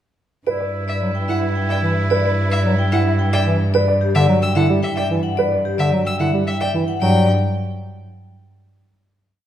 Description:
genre	classical, minimalist pattern music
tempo	110 BPM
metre	3/4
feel	straight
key	G major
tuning	A4 = 440 Hz
part	vibraphone with hard mallets	melody	0.5-7.3 s	G4 to G5	-24 LUFS	left 6 dB	none
part	clear oboe	second line	0.5-3.6 s	E4	-27 LUFS	right 4 dB	none
part	warm symphonic string section	sustained chords	0.5-3.6 s	E4 to B4	-30 LUFS	left 3 dB	none
part	dark grand piano	arpeggios	0.5-7.3 s	E4 to D5	-23 LUFS	right 5 dB	none
part	rich cello	bass	0.5-7.3 s	G2	-21 LUFS	right 1 dB	none
part	clear violin	arpeggios	0.9-7.3 s	E5 to E6	-27 LUFS	left 3 dB	none
part	mellow bass clarinet	accompaniment	1.0-7.3 s	D3 to G3	-22 LUFS	equal	none
room	wet recital hall reverb, RT60 1.6 s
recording	none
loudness	-16 LUFS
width	side -10 dB against mid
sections	0.5-7.0 A section; 7.0-8.7 final chord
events	none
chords	0.5 G6; 7.0 G5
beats	| 0.47 1.01 1.56 | 2.11 2.65 3.20 | 3.74 4.29 4.83 | 5.38 5.92 6.47 | 7.01

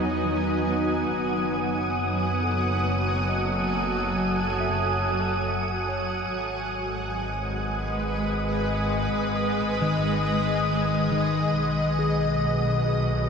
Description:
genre	ambient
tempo	69 BPM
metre	3/4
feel	straight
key	F# dorian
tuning	A4 = 439 Hz
part	shimmering ambient pad	sustained chords	0.0-13.3 s	B2 to G#5	-26 LUFS	right 1 dB	chorus, built-in reverb
part	mellow electric guitar	arpeggios	0.0-13.3 s	D#3 to E5	-30 LUFS	left 3 dB	spring reverb, ping-pong delay
part	rich studio double bass section	bass	0.0-13.3 s	F#1 to E2	-30 LUFS	equal	none
part	wind-like tuned noise texture	texture	0.0-13.3 s	D#6	-31 LUFS	equal	built-in reverb
room	wet huge ambient reverb, RT60 7.1 s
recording	cassette tape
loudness	-23 LUFS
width	side -6 dB against mid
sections	0.0-13.3 A section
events	fade-in on clean electric guitar 0.0-13.3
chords	0.0 Emaj9; 1.1 F#m9; 6.3 G#m7; 11.6 B9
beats	0.25 | 1.12 1.99 2.86 | 3.73 4.59 5.46 | 6.33 7.20 8.07 | 8.94 9.81 10.68 | 11.55 12.42 13.29

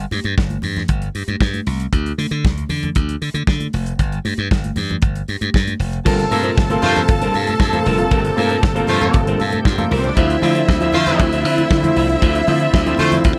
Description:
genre	disco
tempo	117 BPM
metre	4/4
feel	straight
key	G dorian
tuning	A4 = 440 Hz
part	glassy slap bass	bass	0.0-13.3 s	F1 to D3	-23 LUFS	equal	none
part	damped 70s drum kit	drums	0.1-13.4 s	crash cymbal, hi-hat, kick drum, snare drum	-21 LUFS	equal	none
part	congas	percussion	0.1-13.2 s	none	-30 LUFS	equal	none
part	rich studio string section	second line	6.1-13.4 s	F3 to A5	-23 LUFS	equal	none
part	semi-hollow electric guitar	accompaniment	6.1-13.3 s	F4 to E5	-28 LUFS	equal	none
part	warm baby grand piano	accompaniment	6.1-13.4 s	G2 to A4	-24 LUFS	equal	none
part	bright tonewheel organ	sustained chords	6.1-13.4 s	Bb2 to E5	-27 LUFS	equal	overdrive, chorus vibrato, slow rotary speaker
part	warm horn section	stabs	6.8-13.2 s	A3 to C5	-20 LUFS	equal	none
room	light reverb, small room ambience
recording	none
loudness	-17 LUFS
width	mono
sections	0.0-6.1 A section; 6.1-13.4 B section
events	none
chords	0.0 N.C.; 6.1 Gm11; 10.2 Dm9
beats	0.38 0.89 1.41 | 1.93 2.44 2.96 3.48 | 4.00 4.51 5.03 5.54 | 6.06 6.57 7.09 7.60 | 8.11 8.63 9.14 9.65 | 10.17 10.68 11.19 11.71 | 12.22 12.73 13.24

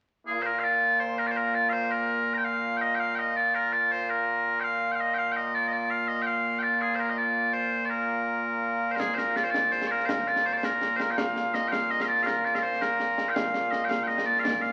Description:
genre	scottish traditional, Scottish pipe music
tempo	110 BPM (dotted quarters)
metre	6/8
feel	straight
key	Bb major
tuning	A4 = 441 Hz
part	loud bright bagpipes	melody	0.3-14.7 s	Bb2 to Bb5	-27 LUFS	equal	none
part	concert snare drum and concert bass drum	drums	9.0-14.7 s	none	-36 LUFS	equal	none
room	wet large studio reverb, RT60 1.4 s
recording	very old 78 rpm record, vinyl crackle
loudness	-27 LUFS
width	mono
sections	0.3-9.0 A section; 9.0-14.7 A section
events	none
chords	none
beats	| 0.27 0.81 | 1.36 1.91 | 2.45 3.00 | 3.54 4.09 | 4.63 5.18 | 5.72 6.27 | 6.82 7.36 | 7.91 8.45 | 9.00 9.54 | 10.09 10.63 | 11.18 11.72 | 12.27 12.81 | 13.36 13.91 | 14.45

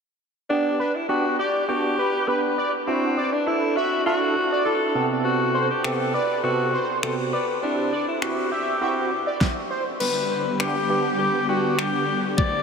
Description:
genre	dance-pop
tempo	101 BPM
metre	4/4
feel	straight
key	G major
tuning	A4 = 439 Hz
part	raspy alto saxophone	melody	0.5-12.6 s	C4 to D5	-24 LUFS	left 2 dB	tape echo
part	barky tine electric piano	accompaniment	0.5-12.0 s	C3 to A4	-26 LUFS	right 3 dB	ensemble chorus, sidechain pumping
part	octave-doubled lead	melody	0.8-9.8 s	B4 to E5	-29 LUFS	right 2 dB	chorus, phaser, sidechain pumping, tape echo
part	pop drum kit	drums	5.8-12.5 s	crash cymbal, finger snaps, kick drum, snare drum	-30 LUFS	left 1 dB	overdrive
part	supersaw chords	sustained chords	10.0-12.6 s	D3 to G4	-27 LUFS	equal	sidechain pumping
room	wet huge ambient reverb, RT60 7.6 s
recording	dreamy mix soaked in reverb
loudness	-20 LUFS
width	side -6 dB against mid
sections	0.5-10.0 A section; 10.0-12.6 B section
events	none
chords	0.5 G; 2.9 Dadd9; 5.0 Amadd9/C; 7.6 C; 10.0 G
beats	| 0.50 1.09 1.69 2.28 | 2.88 3.47 4.06 4.66 | 5.25 5.85 6.44 7.03 | 7.63 8.22 8.82 9.41 | 10.00 10.60 11.19 11.79 | 12.38

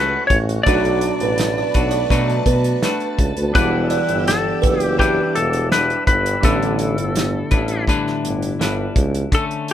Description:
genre	indie pop, bedroom pop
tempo	83 BPM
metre	4/4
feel	straight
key	unclear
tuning	A4 = 441 Hz
part	clean lap steel guitar	melody	0.0-9.4 s	G4 to D5	-20 LUFS	left 3 dB	none
part	semi-hollow electric guitar	accompaniment	0.0-9.7 s	A2 to B4	-24 LUFS	left 4 dB	warbly pitch drift
part	warm analog keys	accompaniment	0.0-9.3 s	G3 to F#5	-29 LUFS	right 6 dB	chorus
part	ensemble organ-string	sustained chords	0.0-6.4 s	G4 to E6	-30 LUFS	equal	phaser, ensemble chorus
part	warm tuba	bass	0.0-9.2 s	E1 to B2	-22 LUFS	equal	none
part	damped 70s drum kit	drums	0.3-9.7 s	hi-hat, kick drum, snare drum	-20 LUFS	equal	none
part	buzzing kalimba	second line	0.7-5.3 s	B4 to D5	-24 LUFS	right 6 dB	none
room	light reverb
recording	band playing live in one room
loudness	-16 LUFS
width	side -10 dB against mid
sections	0.0-9.7 A section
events	none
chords	0.0 Dmaj7 (rootless); 0.7 Bm7; 3.5 Em7; 6.4 A9sus4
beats	| 0.66 1.38 2.10 2.83 | 3.55 4.27 4.99 5.71 | 6.43 7.15 7.88 8.60 | 9.32

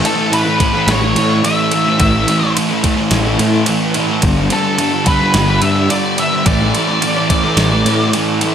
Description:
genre	rock, shoegaze and dream pop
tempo	108 BPM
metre	4/4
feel	straight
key	unclear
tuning	A4 = 439 Hz
part	thick fuzz guitar	riff	0.0-8.5 s	G2 to A3	-15 LUFS	equal	distortion, lush chorus
part	octave-fuzz lead guitar	melody	0.1-8.1 s	A4 to E5	-18 LUFS	equal	distortion, slapback echo
part	clean 12-bit digital drum machine	drums	0.1-8.5 s	kick drum, ride cymbal, snare drum	-19 LUFS	right 1 dB	none
part	fuzz picked electric bass	bass	0.9-8.1 s	G1 to A2	-16 LUFS	equal	overdrive
room	light reverb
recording	none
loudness	-12 LUFS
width	side -8 dB against mid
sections	0.0-8.5 A section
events	none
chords	0.0 A5; 4.2 G; 6.5 A5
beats	0.32 0.88 1.44 | 1.99 2.55 3.11 3.67 | 4.23 4.78 5.34 5.90 | 6.46 7.01 7.57 8.13

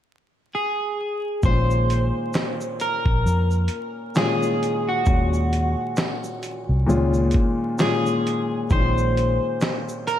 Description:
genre	lo-fi hip hop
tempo	66 BPM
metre	4/4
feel	swing 56% on 16ths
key	Bb minor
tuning	A4 = 439 Hz
part	electric guitar at the edge of break-up	melody	0.5-10.2 s	Gb4 to C5	-25 LUFS	equal	wide subtle chorus, ping-pong delay
part	warm upright piano	accompaniment	1.4-10.2 s	Bb2 to Gb4	-25 LUFS	left 2 dB	cassette tape
part	vintage muted fingered electric bass	bass	1.4-9.4 s	Bb1 to F2	-21 LUFS	equal	none
part	dusty soul sampler-style drum kit	drums	1.4-10.2 s	handclaps, hi-hat, kick drum, shaker, snare drum	-24 LUFS	equal	none
room	moderate plate reverb, RT60 2.4 s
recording	dreamy mix soaked in reverb, vinyl crackle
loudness	-20 LUFS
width	side -11 dB against mid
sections	0.0-1.4 A section; 1.4-10.2 B section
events	none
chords	0.0 N.C.; 1.4 Bbm9; 5.1 Ebm7; 6.9 Db69; 8.7 Bbm9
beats	0.53 | 1.44 2.34 3.25 4.16 | 5.07 5.98 6.89 7.80 | 8.71 9.62

